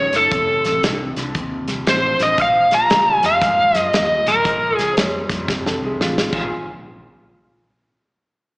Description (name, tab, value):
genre	electric blues shuffle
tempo	116 BPM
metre	4/4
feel	swing 63% on 8ths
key	Bb minor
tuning	A4 = 441 Hz
part	overdriven slide guitar	melody	0.0-4.9 s	A4 to Bb5	-15 LUFS	equal	slapback echo
part	electric guitar through a small old amp	riff	0.0-6.5 s	F2 to F4	-26 LUFS	equal	wide subtle chorus, slapback echo
part	vintage muted fingered electric bass	bass	0.0-6.5 s	F1 to Ab2	-30 LUFS	equal	none
part	warm soul drum kit	drums	0.1-6.4 s	crash cymbal, hi-hat, kick drum, snare drum	-21 LUFS	equal	none
part	dark upright piano	second line	4.9-6.5 s	Ab3 to Db5	-26 LUFS	equal	slapback echo
room	moderate club ambience, RT60 0.5 s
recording	live gig heard through the venue's PA, recital hall reverb, small speaker sound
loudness	-15 LUFS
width	side -31 dB against mid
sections	0.0-6.5 A section; 6.5-8.6 B section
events	drum fill 5.5-6.5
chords	0.3 F7; 2.4 Bbm; 5.5 F; 6.3 Bbm7; 6.5 N.C.